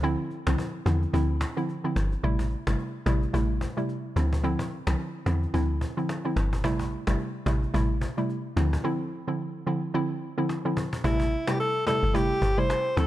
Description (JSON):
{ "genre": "afrobeats", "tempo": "109 BPM", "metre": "4/4", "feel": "swing 58% on 16ths", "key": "A minor", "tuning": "A4 = 440 Hz", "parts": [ { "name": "hollow square pluck", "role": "accompaniment", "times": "0.0-13.1 s", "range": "C3 to E4", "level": "-28 LUFS", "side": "right 1 dB", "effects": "chorus" }, { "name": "deep log drum bass", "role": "bass", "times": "0.0-13.1 s", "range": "G1 to E2", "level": "-26 LUFS", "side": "equal", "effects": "none" }, { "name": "cajon", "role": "drums", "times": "0.0-13.1 s", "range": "none", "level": "-35 LUFS", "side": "equal", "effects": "none" }, { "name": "mellow alto saxophone", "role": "melody", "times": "11.1-13.1 s", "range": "E4 to C5", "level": "-26 LUFS", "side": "left 1 dB", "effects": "none" } ], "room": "small room ambience", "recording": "none", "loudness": "-25 LUFS", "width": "side -14 dB against mid", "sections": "0.0-11.0 A section; 11.0-13.1 B section", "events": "kick muted 2.2-3.3; break 8.8-11.0; drum fill 10.5-11.0", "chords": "0.0 Dm9; 2.2 Am7; 4.2 Dm9; 6.6 Am7; 8.6 Dm9; 11.0 Am7", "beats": "| 0.03 0.58 1.14 1.69 | 2.24 2.79 3.34 3.89 | 4.44 4.99 5.54 6.09 | 6.64 7.19 7.74 8.29 | 8.84 9.39 9.94 10.49 | 11.04 11.59 12.14 12.70" }